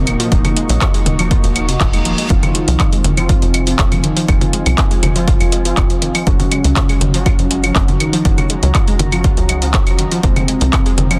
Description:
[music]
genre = melodic techno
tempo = 121 BPM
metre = 4/4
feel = straight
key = F phrygian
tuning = A4 = 440 Hz
[part]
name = soft octave-layered synth lead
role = melody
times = 0.0-11.1 s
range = Bb3 to Eb4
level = -27 LUFS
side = equal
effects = chorus, sidechain pumping, dub echo
[part]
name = airy dreamy lead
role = second line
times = 0.0-11.1 s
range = Bb2 to Eb3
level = -29 LUFS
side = equal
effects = none
[part]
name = deep dark ambient pad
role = sustained chords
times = 0.0-11.2 s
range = F4 to Db6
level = -32 LUFS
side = equal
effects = chorus, built-in reverb, sidechain pumping
[part]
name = analog synth brass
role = stabs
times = 0.0-11.2 s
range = Db3 to Gb4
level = -26 LUFS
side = equal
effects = chorus, sidechain pumping, digital delay
[part]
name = tight sequencer bass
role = bass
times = 0.0-11.2 s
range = Eb1 to Db2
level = -20 LUFS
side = equal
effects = sidechain pumping
[part]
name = unison pluck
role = arpeggios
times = 0.1-11.2 s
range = C3 to F4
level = -26 LUFS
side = equal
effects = sidechain pumping, digital delay
[part]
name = techno drum kit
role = drums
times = 0.1-11.2 s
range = claves, congas, handclaps, hi-hat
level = -21 LUFS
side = equal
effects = sidechain pumping on hats, sidechain pumping on perc
[part]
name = electronic kick drum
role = drums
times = 0.3-10.8 s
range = none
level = -18 LUFS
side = equal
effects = none
[part]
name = reverse cymbal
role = sound effects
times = 1.5-2.3 s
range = none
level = -31 LUFS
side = equal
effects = none
[sound]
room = little or no reverb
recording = dense, heavily limited modern master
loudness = -14 LUFS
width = mono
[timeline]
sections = 0.0-11.2 A section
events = reverse cymbal 1.5-2.3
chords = 0.0 Ebm7; 2.3 Fm7; 6.3 Gbmaj7; 10.2 Dbmaj7/F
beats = | 0.32 0.81 1.31 1.80 | 2.30 2.80 3.29 3.79 | 4.29 4.78 5.28 5.77 | 6.27 6.76 7.26 7.76 | 8.25 8.75 9.24 9.74 | 10.23 10.73

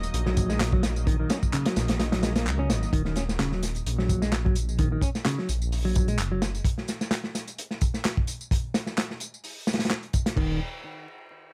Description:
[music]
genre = breakbeat, breaks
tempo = 129 BPM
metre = 4/4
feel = swing 54% on 16ths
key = Eb minor pentatonic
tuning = A4 = 440 Hz
[part]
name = lush unison pad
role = sustained chords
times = 0.0-2.9 s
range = Gb3 to Eb5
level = -40 LUFS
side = equal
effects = chorus, sidechain pumping
[part]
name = dark detuned saw bass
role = bass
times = 0.0-6.6, 10.4-10.6 s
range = Eb1 to Db2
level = -30 LUFS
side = equal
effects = none
[part]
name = crunchy breakbeat drum kit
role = drums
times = 0.0-10.5 s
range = crash cymbal, hi-hat, kick drum, snare drum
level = -29 LUFS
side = equal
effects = none
[part]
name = electronic tambourine and handclaps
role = drums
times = 0.0-10.3 s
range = none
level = -38 LUFS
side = equal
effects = none
[part]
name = clean electric guitar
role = riff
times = 0.3-6.4, 10.4-10.6 s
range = Db3 to Db4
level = -32 LUFS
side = equal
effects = delay
[sound]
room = little or no reverb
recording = vinyl crackle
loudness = -26 LUFS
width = mono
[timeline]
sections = 0.0-2.9 A section; 2.9-10.4 B section; 10.4-11.5 C section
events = drop 0.0-2.9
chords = 0.0 Ebm; 10.4 N.C.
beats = 0.14 0.60 | 1.07 1.53 2.00 2.46 | 2.93 3.39 3.86 4.33 | 4.79 5.25 5.72 6.18 | 6.65 7.12 7.58 8.05 | 8.51 8.98 9.44 9.91 | 10.37

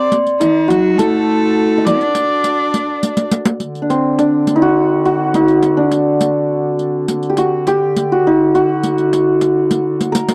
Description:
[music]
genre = Persian modal ensemble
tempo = 69 BPM (dotted quarters)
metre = 6/8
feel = straight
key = D dastgah homayun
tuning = A4 = 440 Hz
[part]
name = santur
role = melody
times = 0.0-10.3 s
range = C4 to Eb5+45c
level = -16 LUFS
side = equal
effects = none
[part]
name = clear kamancheh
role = second line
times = 0.0-3.3 s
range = Eb4+49c to D5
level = -22 LUFS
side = equal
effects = none
[part]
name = rich cello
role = second line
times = 0.0-3.3 s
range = Eb3+38c to D4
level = -23 LUFS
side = equal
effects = none
[part]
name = riq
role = percussion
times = 0.1-10.3 s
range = none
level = -22 LUFS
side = equal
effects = none
[part]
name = warm duduk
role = drone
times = 3.6-10.3 s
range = D3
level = -26 LUFS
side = equal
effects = none
[sound]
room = little or no reverb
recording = dry, close 1970s-style studio recording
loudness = -15 LUFS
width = mono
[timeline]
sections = 0.0-3.6 A section; 3.6-10.3 B section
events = drum fill 3.0-3.6, 10.0-10.3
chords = none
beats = | 0.11 0.98 | 1.85 2.73 | 3.60 4.47 | 5.34 6.21 | 7.09 7.96 | 8.83 9.70

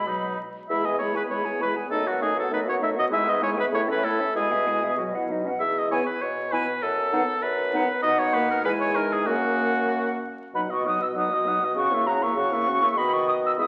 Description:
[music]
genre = quick classical-period movement for wind quintet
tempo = 98 BPM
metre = 2/4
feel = rubato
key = E major, B major from 8.0 s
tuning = A4 = 440 Hz
[part]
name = silver concert flute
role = melody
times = 0.0-13.7 s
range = C#5 to E6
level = -30 LUFS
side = equal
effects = none
[part]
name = clear oboe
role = second line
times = 0.0-13.7 s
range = D#4 to F#5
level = -29 LUFS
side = equal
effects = none
[part]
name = clear clarinet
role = accompaniment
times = 0.0-13.7 s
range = C#4 to B4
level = -35 LUFS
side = equal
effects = none
[part]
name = warm French horn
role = accompaniment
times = 0.0-13.7 s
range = F#3 to C#4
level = -34 LUFS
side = equal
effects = none
[part]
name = mellow bassoon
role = bass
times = 0.0-13.7 s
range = E2 to D#3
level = -32 LUFS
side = equal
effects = none
[sound]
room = wet recital hall reverb, RT60 1.7 s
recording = very old 78 rpm record, vinyl crackle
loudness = -24 LUFS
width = mono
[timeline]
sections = 0.7-10.5 A section; 10.5-13.7 B section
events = none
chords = 0.1 B; 0.7 E; 1.9 B7/F#; 3.1 E/G#; 3.7 A; 4.4 E/B; 5.0 B; 5.6 E; 6.8 B7/F#; 8.0 B; 8.7 Emaj7#11; 9.3 F#; 10.5 B; 11.8 F#7/C#; 13.0 B/D#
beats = 0.07 | 0.70 1.31 | 1.91 2.52 | 3.12 3.73 | 4.36 4.98 | 5.60 6.22 | 6.83 7.43 | 8.03 8.65 | 9.28 9.91 | 10.55 11.16 | 11.77 12.37 | 12.97 13.59

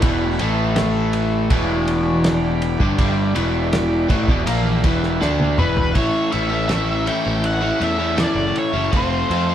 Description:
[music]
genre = psychedelic rock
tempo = 81 BPM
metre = 4/4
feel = straight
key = A mixolydian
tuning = A4 = 440 Hz
[part]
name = tonewheel organ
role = sustained chords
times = 0.0-9.5 s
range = E3 to B5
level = -30 LUFS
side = right 3 dB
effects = slow rotary speaker
[part]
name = overdriven electric guitar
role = riff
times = 0.0-9.5 s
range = E2 to F4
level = -20 LUFS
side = left 1 dB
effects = none
[part]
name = fuzz picked electric bass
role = bass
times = 0.0-9.5 s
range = E1 to F2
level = -23 LUFS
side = equal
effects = overdrive
[part]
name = tanpura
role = drone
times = 0.0-9.5 s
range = A2 to C#4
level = -29 LUFS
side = equal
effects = none
[part]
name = cloth-damped thuddy drum kit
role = drums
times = 0.0-9.5 s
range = kick drum, ride cymbal, snare drum, toms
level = -23 LUFS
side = equal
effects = none
[part]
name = octave-fuzz lead guitar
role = melody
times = 5.6-9.5 s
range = B4 to G5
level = -24 LUFS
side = left 2 dB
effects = wah, distortion
[sound]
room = moderate studio reverb, RT60 0.8 s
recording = band playing live in one room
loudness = -16 LUFS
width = side -10 dB against mid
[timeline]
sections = 0.0-6.0 A section; 6.0-9.5 B section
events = drum fill 5.2-6.0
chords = 0.0 Em7; 0.4 A5; 1.5 Em7; 6.0 A; 8.9 F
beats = | 0.04 0.78 1.51 2.25 | 2.99 3.73 4.47 5.21 | 5.95 6.69 7.44 8.18 | 8.92

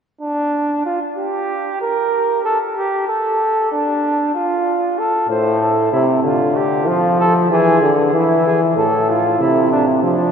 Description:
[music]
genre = classical, imitative canzona for brass ensemble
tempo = 95 BPM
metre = 4/4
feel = straight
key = unclear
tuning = A4 = 440 Hz
[part]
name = mellow flugelhorn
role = second line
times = 0.2-10.3 s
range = D4 to C5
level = -17 LUFS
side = right 1 dB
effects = none
[part]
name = clear trombone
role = accompaniment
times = 5.3-10.3 s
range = A2 to F3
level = -15 LUFS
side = left 1 dB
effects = none
[sound]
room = wet cathedral reverb, RT60 4.9 s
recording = none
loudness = -14 LUFS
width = side -7 dB against mid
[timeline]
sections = 0.0-10.3 A section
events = none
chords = 0.0 N.C.; 5.0 Am; 6.2 Dmadd11; 7.5 E; 8.8 Am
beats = 0.53 1.18 1.81 | 2.45 3.08 3.71 4.35 | 4.98 5.61 6.24 6.88 | 7.50 8.13 8.77 9.40 | 10.03

